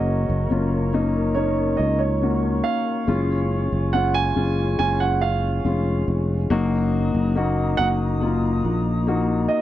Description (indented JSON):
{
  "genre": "pop ballad",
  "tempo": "70 BPM",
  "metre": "4/4",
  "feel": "straight",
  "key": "F# major",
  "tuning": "A4 = 438 Hz",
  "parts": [
    { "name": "warm concert grand piano", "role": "melody", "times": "0.0-9.6 s", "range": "C#5 to G#5", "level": "-25 LUFS", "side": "right 7 dB", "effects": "none" },
    { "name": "warm concert grand piano", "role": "accompaniment", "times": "0.0-9.6 s", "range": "C#3 to F#4", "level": "-23 LUFS", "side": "left 4 dB", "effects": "none" },
    { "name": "mellow small flute group", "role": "sustained chords", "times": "0.0-9.6 s", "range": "D#4 to D#6", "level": "-34 LUFS", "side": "right 1 dB", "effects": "none" },
    { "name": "sustaining fretless electric bass", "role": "bass", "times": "0.0-9.5 s", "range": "E#1 to C#2", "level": "-22 LUFS", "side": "right 1 dB", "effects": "none" }
  ],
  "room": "little or no reverb",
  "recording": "dry, close 1970s-style studio recording",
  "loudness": "-19 LUFS",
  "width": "side -13 dB against mid",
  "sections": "0.0-9.6 A section",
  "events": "none",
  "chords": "0.0 F#; 3.1 C#/F#; 6.5 D#m/F#",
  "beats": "0.50 1.36 2.22 | 3.08 3.93 4.79 5.65 | 6.50 7.36 8.22 9.08"
}